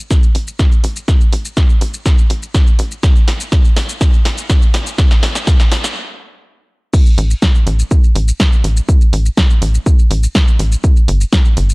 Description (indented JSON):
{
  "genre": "melodic techno",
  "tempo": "123 BPM",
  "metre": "4/4",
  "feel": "straight",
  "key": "unclear",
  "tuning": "A4 = 440 Hz",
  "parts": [
    { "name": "tight sequencer bass", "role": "bass", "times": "0.0-11.7 s", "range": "G1 to A1", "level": "-16 LUFS", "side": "equal", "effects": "sidechain pumping, high-pass filter" },
    { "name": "electronic kick drum", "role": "drums", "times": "0.1-11.4 s", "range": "none", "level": "-11 LUFS", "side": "equal", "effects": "none" },
    { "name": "techno drum kit", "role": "drums", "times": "0.1-11.7 s", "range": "crash cymbal, hi-hat, shaker, snare drum", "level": "-20 LUFS", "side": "equal", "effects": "high-pass filter on snare, high-pass filter on perc, high-pass filter on hats, high-pass filter on cymbals, high-pass filter on room" }
  ],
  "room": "little or no reverb",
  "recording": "dry, gritty hardware recording, cassette tape",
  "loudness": "-10 LUFS",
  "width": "side -27 dB against mid",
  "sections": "0.0-6.9 A section; 6.9-11.7 B section",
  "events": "build-up 0.0-6.9; drum fill 0.0-6.0; stop 6.0-6.9; drop 6.9-11.7",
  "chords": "none"
}